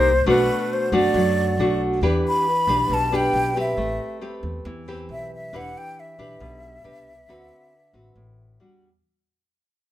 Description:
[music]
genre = bossa nova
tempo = 137 BPM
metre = 4/4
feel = straight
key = E minor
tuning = A4 = 440 Hz
[part]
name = breathy concert flute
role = melody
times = 0.0-8.6 s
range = B4 to B5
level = -23 LUFS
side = left 1 dB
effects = none
[part]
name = nylon-string guitar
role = accompaniment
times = 0.0-8.9 s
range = A2 to B4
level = -23 LUFS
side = equal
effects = none
[part]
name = upright bass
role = bass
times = 0.0-9.0 s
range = E1 to F#2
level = -27 LUFS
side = equal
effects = none
[sound]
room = light reverb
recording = minimal, uncompressed stereo recording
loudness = -18 LUFS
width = side -13 dB against mid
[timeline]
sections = 0.0-9.0 A section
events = fade-out 0.0-9.0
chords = 0.3 Bm7; 2.0 Em7; 3.8 Am9; 5.5 Em7; 7.3 D13; 8.6 Em9

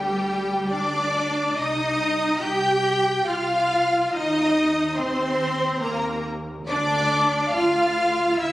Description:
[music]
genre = classical, slow romantic movement for string orchestra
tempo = 70 BPM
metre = 3/4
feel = rubato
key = C minor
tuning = A4 = 439 Hz
[part]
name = rich studio violin section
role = melody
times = 0.0-8.5 s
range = G5 to G6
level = -30 LUFS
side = left 1 dB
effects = none
[part]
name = warm symphonic violin section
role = second line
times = 0.0-8.5 s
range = G4 to G5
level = -24 LUFS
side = left 1 dB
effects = none
[part]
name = warm symphonic viola section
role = accompaniment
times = 0.0-8.5 s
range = G3 to G4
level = -24 LUFS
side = equal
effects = none
[part]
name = clear symphonic cello section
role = bass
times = 0.0-8.5 s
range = G3 to G4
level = -30 LUFS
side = right 1 dB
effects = none
[part]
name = warm symphonic double bass section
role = bass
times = 0.0-8.5 s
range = C2 to Eb2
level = -33 LUFS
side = equal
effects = none
[sound]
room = wet scoring stage reverb, RT60 1.8 s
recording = recorded on a phone in the room, club reverb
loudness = -20 LUFS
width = side -16 dB against mid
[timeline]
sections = 0.0-8.5 A section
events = none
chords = 0.0 G5/D; 1.6 Cm; 4.1 Cm/Eb; 6.7 Dmadd9

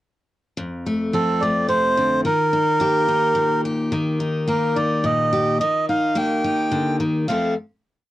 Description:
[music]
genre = country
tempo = 108 BPM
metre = 3/4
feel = straight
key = F mixolydian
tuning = A4 = 439 Hz
[part]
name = picked steel-string acoustic guitar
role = accompaniment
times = 0.6-7.5 s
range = F2 to A4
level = -21 LUFS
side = left 1 dB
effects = none
[part]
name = melodica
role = melody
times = 1.1-7.5 s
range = A4 to G5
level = -19 LUFS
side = right 1 dB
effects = none
[sound]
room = light reverb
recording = worn, warbling old tape, cassette tape, warbly pitch drift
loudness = -18 LUFS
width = side -15 dB against mid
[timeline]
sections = 0.6-7.3 verse; 7.3-8.1 final chord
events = none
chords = 0.6 F; 2.3 Eb; 7.3 F

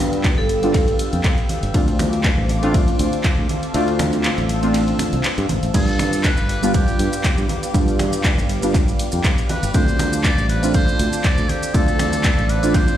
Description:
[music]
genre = deep house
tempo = 120 BPM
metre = 4/4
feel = swing 54% on 16ths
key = D dorian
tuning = A4 = 439 Hz
[part]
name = airy breathy pad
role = sustained chords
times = 0.0-13.0 s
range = B4 to E6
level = -31 LUFS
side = left 1 dB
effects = chorus, phaser, sidechain pumping
[part]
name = deep mellow chord stab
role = stabs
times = 0.0-13.0 s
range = G3 to F4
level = -24 LUFS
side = right 1 dB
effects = chorus, vintage 12-bit sampler grit, sidechain pumping, tape echo
[part]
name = modern bright fingered electric bass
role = bass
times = 0.0-12.9 s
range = G1 to G2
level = -22 LUFS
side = equal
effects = none
[part]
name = warbly tape-like pad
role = texture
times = 0.0-13.0 s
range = B3 to F5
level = -29 LUFS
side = left 1 dB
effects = chorus, built-in reverb, sidechain pumping
[part]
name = punchy analog drum machine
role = drums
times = 0.1-13.0 s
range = crash cymbal, finger snaps, handclaps, hi-hat, ride cymbal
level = -26 LUFS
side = equal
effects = none
[part]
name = electronic kick drum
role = drums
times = 0.2-12.9 s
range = none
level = -19 LUFS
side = equal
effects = none
[part]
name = vibraphone with hard mallets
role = melody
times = 0.4-0.9 s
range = A4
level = -25 LUFS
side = right 2 dB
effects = tape echo
[part]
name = congas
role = percussion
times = 0.4-12.5 s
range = none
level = -29 LUFS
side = right 2 dB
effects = none
[part]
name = trumpet with metal mute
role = melody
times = 5.7-13.0 s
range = G4 to D5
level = -26 LUFS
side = equal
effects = tape echo
[part]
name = maracas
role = percussion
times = 5.7-13.0 s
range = none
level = -33 LUFS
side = right 2 dB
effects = none
[sound]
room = light reverb, studio reverb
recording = played on a big sound system in a bare room, stone room reverb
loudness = -16 LUFS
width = side -11 dB against mid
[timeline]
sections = 0.0-13.0 A section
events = kick drops out 3.7-5.7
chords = 0.0 G7; 1.7 Dm7; 5.7 G7; 9.7 Dm7

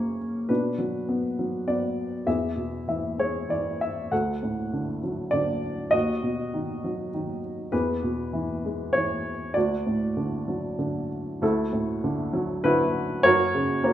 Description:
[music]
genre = classical, lyrical solo piano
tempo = 99 BPM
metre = 3/4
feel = rubato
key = D lydian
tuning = A4 = 437 Hz
[part]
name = warm upright piano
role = solo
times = 0.0-13.9 s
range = D2 to F#5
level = -24 LUFS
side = equal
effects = none
[sound]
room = moderate recital hall reverb, RT60 1.7 s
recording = minimal, uncompressed stereo recording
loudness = -24 LUFS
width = side -11 dB against mid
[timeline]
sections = 0.0-11.4 A section; 11.4-13.9 A section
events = none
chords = 0.5 Bm; 2.3 E; 4.1 D; 5.9 B/D#; 7.7 E; 9.6 D; 11.4 Dadd9; 13.3 F#

